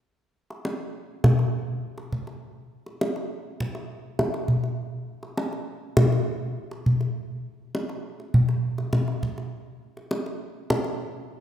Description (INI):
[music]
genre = gamelan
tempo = 102 BPM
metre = 4/4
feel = straight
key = none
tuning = none
[part]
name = kendang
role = percussion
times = 0.5-10.9 s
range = none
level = -24 LUFS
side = equal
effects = none
[sound]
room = wet scoring stage reverb, RT60 1.8 s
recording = none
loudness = -24 LUFS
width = side -10 dB against mid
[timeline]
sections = 0.1-11.4 A section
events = none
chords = none